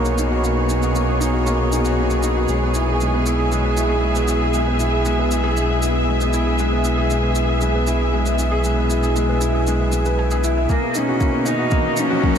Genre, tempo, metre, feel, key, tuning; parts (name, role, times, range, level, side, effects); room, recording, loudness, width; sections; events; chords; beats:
piano and strings electronica; 117 BPM; 4/4; straight; A4 = 440 Hz
muted chamber string section; sustained chords; 0.0-12.4 s; B2 to E5; -23 LUFS; equal; sidechain pumping
felt-muted upright piano; riff; 0.0-12.4 s; G#3 to G#5; -21 LUFS; equal; ping-pong delay
warm sub bass; bass; 0.0-12.1 s; B1; -21 LUFS; equal; tube saturation, sidechain pumping, high-pass filter
shaker; drums; 0.1-12.4 s; -34 LUFS; right 2 dB
rich cello; melody; 10.7-12.4 s; A#3 to D#4; -21 LUFS; right 1 dB; low-pass filter, ping-pong delay
electronic kick drum; drums; 10.7-12.3 s; -20 LUFS; equal
riser; sound effects; 11.3-12.4 s; -27 LUFS; left 4 dB
moderate huge ambient reverb, RT60 7.8 s; dreamy mix soaked in reverb; -17 LUFS; side -8 dB against mid
0.0-10.7 A section; 10.7-12.4 B section
build-up 10.7-12.4; riser 11.3-12.4
0.0 Bmaj7; 2.5 E/B; 10.7 Bmaj7
| 0.44 0.96 1.47 1.98 | 2.49 3.01 3.52 4.03 | 4.55 5.06 5.57 6.08 | 6.60 7.11 7.62 8.13 | 8.65 9.16 9.67 10.19 | 10.70 11.21 11.72 12.24